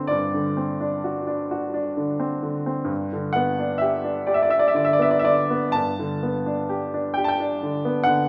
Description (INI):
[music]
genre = classical, romantic nocturne for solo piano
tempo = 38-45 BPM (dotted quarters)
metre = 12/8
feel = rubato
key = G major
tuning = A4 = 440 Hz
[part]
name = bright upright piano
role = solo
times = 0.0-8.3 s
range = G2 to A5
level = -23 LUFS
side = equal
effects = none
[sound]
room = wet recital hall reverb, RT60 1.6 s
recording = none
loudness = -23 LUFS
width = mono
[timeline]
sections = 0.0-8.3 A section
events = none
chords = 0.0 D7/G; 2.9 G